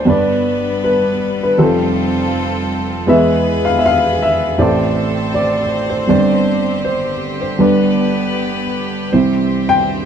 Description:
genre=acoustic folk-pop ballad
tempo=80 BPM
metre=4/4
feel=straight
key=unclear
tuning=A4 = 440 Hz
part: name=dark baby grand piano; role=melody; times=0.0-10.1 s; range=F1 to G5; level=-14 LUFS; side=equal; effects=none
part: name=rich chamber string section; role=sustained chords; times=0.0-10.1 s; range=D3 to C5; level=-21 LUFS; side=left 2 dB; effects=none
room=light reverb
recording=dark, warm production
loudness=-13 LUFS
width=side -8 dB against mid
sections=0.0-10.1 A section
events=none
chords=0.1 G; 1.6 Fadd9; 3.1 E; 4.6 Am; 6.1 Gsus4; 7.6 G; 9.1 C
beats=| 0.07 0.82 1.58 2.33 | 3.08 3.84 4.59 5.34 | 6.09 6.85 7.60 8.36 | 9.12 9.88

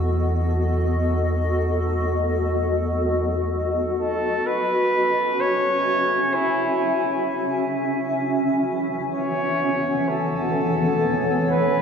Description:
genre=ambient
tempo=free time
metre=none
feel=none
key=E major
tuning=A4 = 440 Hz
part: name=granular cloud pad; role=sustained chords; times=0.0-11.8 s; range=E3 to G#5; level=-22 LUFS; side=left 1 dB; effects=built-in reverb
part: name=round analog bass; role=bass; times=0.0-4.4 s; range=E2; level=-24 LUFS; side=equal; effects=none
part: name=warm flugelhorn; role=melody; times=4.0-11.8 s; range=E4 to C#5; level=-23 LUFS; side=equal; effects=none
room=wet cathedral reverb, RT60 6.1 s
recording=none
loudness=-20 LUFS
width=side -6 dB against mid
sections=0.0-4.5 A section; 4.5-11.8 B section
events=none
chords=0.0 B7/E; 4.5 E69; 8.2 Amaj9/E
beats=free time

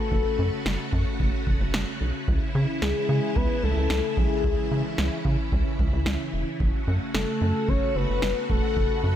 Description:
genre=synth-pop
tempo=111 BPM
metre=4/4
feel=straight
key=F# minor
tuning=A4 = 438 Hz
part: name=soft octave-layered synth lead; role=melody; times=0.0-9.2 s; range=G#4 to C#5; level=-29 LUFS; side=left 4 dB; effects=chorus, phaser, ping-pong delay, shimmer reverb
part: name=string machine, violins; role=sustained chords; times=0.0-9.2 s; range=C#3 to F#4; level=-30 LUFS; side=equal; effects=ensemble chorus, shimmer reverb
part: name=rubbery square bass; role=bass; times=0.1-9.1 s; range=E1 to C#3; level=-26 LUFS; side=equal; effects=none
part: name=electro analog drum machine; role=drums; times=0.1-8.9 s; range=kick drum, snare drum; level=-27 LUFS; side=equal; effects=none
room=light reverb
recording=none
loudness=-22 LUFS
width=side -10 dB against mid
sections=0.0-9.2 A section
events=none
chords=0.0 F#m; 2.3 C#m; 6.6 F#m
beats=| 0.12 0.66 1.20 1.74 | 2.28 2.82 3.36 3.90 | 4.44 4.98 5.52 6.06 | 6.61 7.14 7.69 8.23 | 8.77

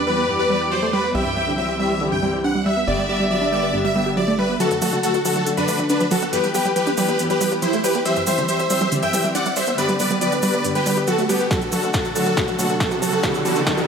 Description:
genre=uplifting trance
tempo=139 BPM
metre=4/4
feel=straight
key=G major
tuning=A4 = 440 Hz
part: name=bright chamber violin section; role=second line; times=0.0-4.5 s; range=D5 to G5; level=-26 LUFS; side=equal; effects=tape echo
part: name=tight sequencer bass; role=bass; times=0.0-13.9 s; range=G1 to E2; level=-34 LUFS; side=equal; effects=sidechain pumping, high-pass filter
part: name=supersaw chords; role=melody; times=0.1-13.8 s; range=B3 to G5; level=-21 LUFS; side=equal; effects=lush chorus, sidechain pumping, tape echo
part: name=dark studio string section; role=sustained chords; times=0.1-13.8 s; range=D3 to G4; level=-25 LUFS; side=left 2 dB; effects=sidechain pumping
part: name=wide unison pluck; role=arpeggios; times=0.1-13.8 s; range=F#2 to G4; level=-24 LUFS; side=right 2 dB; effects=sidechain pumping, tape echo
part: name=big-room dance drum kit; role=drums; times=4.6-13.9 s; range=hi-hat, snare drum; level=-29 LUFS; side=equal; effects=high-pass filter on hats, high-pass filter on snare, high-pass filter on room
part: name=cabasa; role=percussion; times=4.6-13.9 s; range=none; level=-31 LUFS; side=right 3 dB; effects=none
part: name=electronic kick drum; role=drums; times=11.5-13.8 s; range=none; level=-24 LUFS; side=equal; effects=none
part: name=riser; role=sound effects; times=12.1-13.9 s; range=none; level=-27 LUFS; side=left 1 dB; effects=none
room=moderate lush hall reverb, RT60 2.4 s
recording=high-pass filter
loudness=-17 LUFS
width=side -6 dB against mid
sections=0.0-4.6 A section; 4.6-13.9 B section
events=build-up 4.6-13.9; filter sweep on synth pluck 4.6-13.9; drum fill 11.5-13.9; riser 12.1-13.9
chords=0.0 Em; 1.1 C; 2.9 G; 4.6 D; 6.3 Em; 8.1 C; 9.8 G; 11.5 D; 13.2 Em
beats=0.28 0.72 | 1.15 1.58 2.01 2.44 | 2.88 3.31 3.74 4.17 | 4.60 5.03 5.46 5.90 | 6.33 6.76 7.19 7.62 | 8.05 8.49 8.92 9.35 | 9.78 10.21 10.64 11.08 | 11.51 11.94 12.37 12.80 | 13.23 13.67

